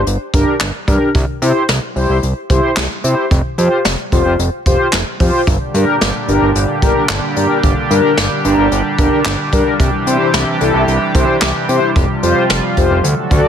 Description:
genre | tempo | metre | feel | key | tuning
synth-pop | 111 BPM | 4/4 | straight | G dorian | A4 = 440 Hz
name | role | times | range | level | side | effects
fat analog bass | bass | 0.0-13.4 s | F1 to C3 | -17 LUFS | equal | none
jazz brush drum kit | drums | 0.1-13.4 s | handclaps, hi-hat, kick drum, snare drum | -17 LUFS | equal | none
mellow synth brass | accompaniment | 0.3-13.5 s | D4 to D5 | -16 LUFS | left 2 dB | chorus
chorused pulse-width pad | sustained chords | 5.5-13.5 s | Bb2 to A4 | -17 LUFS | right 1 dB | none
room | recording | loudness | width
light reverb, small room ambience | none | -12 LUFS | side -8 dB against mid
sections
0.0-13.5 A section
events
none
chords
0.0 Gm; 1.1 C; 3.3 Fsus2; 5.5 Gm; 9.8 Cadd9; 12.0 Fsus2

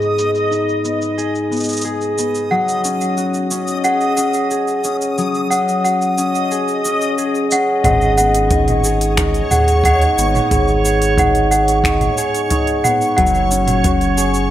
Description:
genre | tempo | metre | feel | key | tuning
folktronica | 90 BPM | 4/4 | straight | unclear | A4 = 440 Hz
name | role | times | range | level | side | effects
concert harp | arpeggios | 0.0-14.5 s | G#2 to G#4 | -18 LUFS | left 1 dB | low-pass filter, tape echo
organic electronic drum kit | drums | 0.0-14.5 s | cabasa, finger snaps, hi-hat, toms | -23 LUFS | equal | low-pass filter on hats, low-pass filter on perc, low-pass filter on toms, low-pass filter on snare, low-pass filter on room
backwards swelling texture | texture | 0.0-14.5 s | C#5 to D#6 | -23 LUFS | right 1 dB | built-in reverb
celesta | second line | 2.5-14.5 s | F#5 | -18 LUFS | right 1 dB | tape echo
round analog bass | bass | 7.8-14.5 s | F#1 to D#2 | -19 LUFS | equal | none
kick drum | drums | 7.8-14.0 s | none | -21 LUFS | equal | none
room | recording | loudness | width
moderate recital hall reverb, RT60 1.4 s, small room ambience | none | -14 LUFS | side -12 dB against mid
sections
0.0-7.8 A section; 7.8-14.5 B section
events
none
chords
0.0 G#m; 2.5 F#sus2; 7.8 G#m; 13.2 F#sus2

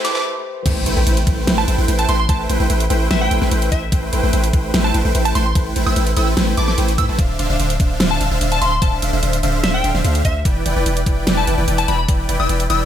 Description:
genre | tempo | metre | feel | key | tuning
future bass | 147 BPM | 4/4 | half-time | unclear | A4 = 438 Hz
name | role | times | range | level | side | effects
glassy wavetable pluck | melody | 0.0-12.9 s | E5 to E6 | -22 LUFS | left 1 dB | chorus, sidechain pumping, ping-pong delay
glassy digital keys | accompaniment | 0.0-0.7 s | A3 to C5 | -28 LUFS | equal | chorus, sidechain pumping, ping-pong delay
supersaw chords | riff | 0.0-12.9 s | D3 to A5 | -21 LUFS | equal | sidechain pumping
dubstep drum kit | drums | 0.0-12.8 s | crash cymbal, hi-hat, snare drum | -22 LUFS | right 1 dB | high-pass filter on snare, studio reverb, high-pass filter on hats, high-pass filter on cymbals
riser and impact | sound effects | 0.0-2.3 s | none | -27 LUFS | equal | none
long sustained 808-style bass | bass | 0.7-12.9 s | D1 to A2 | -19 LUFS | equal | sidechain pumping
electronic kick drum | drums | 0.7-12.2 s | none | -18 LUFS | equal | studio reverb
room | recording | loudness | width
light reverb | high-pass filter | -15 LUFS | side -10 dB against mid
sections
0.7-12.9 A section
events
drum fill 0.0; riser 0.0; stop 0.2-0.7; drop 0.7-12.9; impact 0.7-2.3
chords
0.0 Am9; 7.2 Dm9; 10.5 Em7

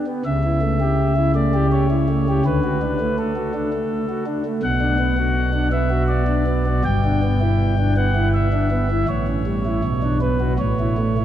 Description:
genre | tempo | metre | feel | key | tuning
classical, chorale-style piece for pipe organ | 82 BPM | 3/4 | rubato | D major | A4 = 444 Hz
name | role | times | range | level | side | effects
chamber organ, principal | solo | 0.0-11.2 s | G1 to G5 | -17 LUFS | equal | none
room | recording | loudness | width
wet cathedral reverb, RT60 4.8 s | dark, warm production | -17 LUFS | side -11 dB against mid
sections
0.0-11.2 A section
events
none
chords
0.3 A7/C#; 2.5 D; 4.6 Bm; 6.9 Em7/G; 9.1 A7; 9.8 Bm; 10.6 A

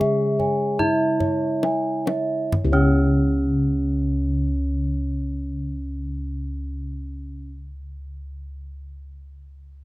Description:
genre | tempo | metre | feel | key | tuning
Javanese gamelan | 32 BPM | 4/4 | straight | unclear | A4 = 441 Hz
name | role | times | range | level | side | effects
gamelan-type bronze metallophone | melody | 0.0-7.5 s | C#4 to G#4-30c | -24 LUFS | right 1 dB | none
gamelan-type bronze metallophone | accompaniment | 0.0-7.5 s | C#3 to G#3-30c | -29 LUFS | left 1 dB | none
gamelan-type bossed gongs | arpeggios | 0.0-7.5 s | C#5 to E5-30c | -28 LUFS | left 4 dB | none
gamelan-type bronze metallophone | arpeggios | 0.0-7.5 s | C#5 to G#5-30c | -30 LUFS | right 3 dB | plate reverb
gamelan-type bossed gongs | bass | 0.0-7.4 s | C#2 to D4+20c | -27 LUFS | equal | none
kendang | percussion | 0.0-3.4 s | none | -26 LUFS | left 1 dB | none
room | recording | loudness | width
moderate studio reverb, RT60 0.5 s | rough home demo mix | -20 LUFS | side -18 dB against mid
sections
0.0-2.5 A section; 2.5-9.8 B section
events
slowing down 0.0-2.5; drum fill 0.4-2.5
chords
none

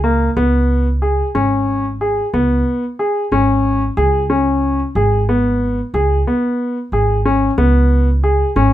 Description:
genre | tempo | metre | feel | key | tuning
contemporary instrumental, chamber music in an uneven meter | 183 BPM (eighths) | 11/8 | straight | unclear | A4 = 435 Hz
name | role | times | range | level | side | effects
clear grand piano | arpeggios | 0.0-8.7 s | A#3 to G#4 | -16 LUFS | left 1 dB | none
upright bass | bass | 0.0-8.7 s | G#1 to C#2 | -17 LUFS | right 1 dB | none
room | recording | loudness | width
light reverb | minimal, uncompressed stereo recording | -14 LUFS | side -13 dB against mid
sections
0.4-8.7 A section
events
none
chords
0.4 C#5

